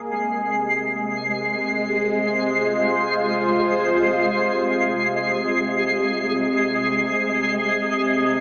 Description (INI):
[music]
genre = ambient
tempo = free time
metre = none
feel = none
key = F minor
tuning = A4 = 441 Hz
[part]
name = evolving wavetable pad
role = sustained chords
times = 0.0-8.4 s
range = C3 to C5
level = -21 LUFS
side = equal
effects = phaser, built-in reverb
[part]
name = muted felt-like synth keys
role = arpeggios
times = 0.0-6.9 s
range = Ab5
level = -30 LUFS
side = equal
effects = chorus, diffuse ambient delay
[part]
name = twinkling granular texture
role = texture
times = 0.0-8.4 s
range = Ab3 to C7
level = -21 LUFS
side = equal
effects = built-in reverb
[sound]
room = wet cathedral reverb, RT60 5.4 s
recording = in a vast, echoing space, AM radio sound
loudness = -18 LUFS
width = side -37 dB against mid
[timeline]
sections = 0.0-8.4 A section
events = none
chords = 0.0 Fm; 6.9 N.C.